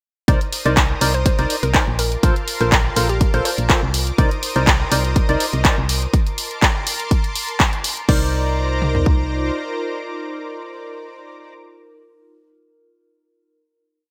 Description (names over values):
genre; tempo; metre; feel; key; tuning
piano house; 123 BPM; 4/4; swing 53% on 16ths; C dorian; A4 = 439 Hz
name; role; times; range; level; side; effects
analog string pad; sustained chords; 0.3-11.5 s; Bb4 to Eb6; -32 LUFS; equal; ensemble chorus, sidechain pumping
percussive organ stab; riff; 0.3-11.5 s; Eb4 to D5; -26 LUFS; equal; analog chorus, sidechain pumping, digital delay
solid FM bass; bass; 0.3-9.5 s; Bb1 to C2; -24 LUFS; equal; sidechain pumping
house drum kit; drums; 0.3-9.2 s; kick drum, toms; -20 LUFS; equal; none
punchy analog drum machine; drums; 0.3-8.2 s; crash cymbal, handclaps, hi-hat; -22 LUFS; equal; none
warbly tape-like pad; texture; 0.3-11.7 s; Eb4 to Eb5; -35 LUFS; equal; chorus, built-in reverb, sidechain pumping
hollow square pluck; melody; 1.1-3.5 s; G4 to C5; -29 LUFS; equal; chorus, digital delay
room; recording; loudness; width
light reverb; bright 1980s-style digital production; -18 LUFS; mono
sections
0.3-8.1 groove; 8.1-12.0 final chord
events
none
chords
0.3 Cm9; 2.0 Bbmaj9; 3.9 Cm9; 6.1 Bbmaj9; 8.1 Cm9